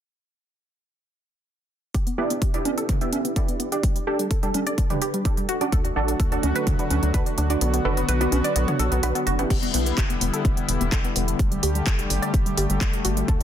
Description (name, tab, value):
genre	progressive house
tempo	127 BPM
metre	4/4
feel	straight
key	E minor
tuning	A4 = 444 Hz
part	analog pluck	arpeggios	1.9-13.4 s	G3 to D5	-29 LUFS	left 1 dB	chorus, sidechain pumping, digital delay
part	electronic kick drum	drums	1.9-13.4 s	none	-23 LUFS	equal	none
part	house drum kit	drums	1.9-13.4 s	crash cymbal, handclaps, hi-hat	-29 LUFS	right 1 dB	none
part	supersaw stab	stabs	2.2-9.7 s	B3 to F#5	-27 LUFS	right 3 dB	sidechain pumping, low-pass filter, digital delay
part	electronic congas and toms	percussion	2.7-9.5 s	none	-29 LUFS	right 3 dB	sidechain pumping on perc, sidechain pumping on toms
part	warm analog pad	sustained chords	5.7-13.4 s	D3 to G4	-28 LUFS	left 2 dB	chorus, tremolo, sidechain pumping
part	tight sequencer bass	bass	5.7-13.4 s	E1 to D2	-25 LUFS	equal	sidechain pumping
room	light reverb, digital ambience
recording	dense, heavily limited modern master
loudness	-20 LUFS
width	side -10 dB against mid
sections	1.9-9.5 A section; 9.5-13.4 B section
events	filter sweep on synth arpeggio sound 1.9-9.5; kick drops out 7.6-9.5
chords	1.9 Em7; 3.8 Gsus2; 5.7 D; 7.6 Bm; 9.5 Em7; 11.4 Gsus2